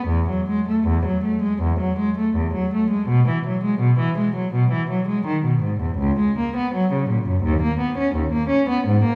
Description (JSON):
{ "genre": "classical, baroque-style suite movement for unaccompanied cello", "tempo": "74-86 BPM", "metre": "4/4", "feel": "rubato", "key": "E major, B major from 3.1 s", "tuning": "A4 = 440 Hz", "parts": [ { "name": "dark cello", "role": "solo", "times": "0.0-9.2 s", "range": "C#2 to C#4", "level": "-21 LUFS", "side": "equal", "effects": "none" } ], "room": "wet recital hall reverb, RT60 1.4 s", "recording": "heard from further back in the room", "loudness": "-21 LUFS", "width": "mono", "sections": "0.0-3.1 A section; 3.1-9.2 A section", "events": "none", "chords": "none" }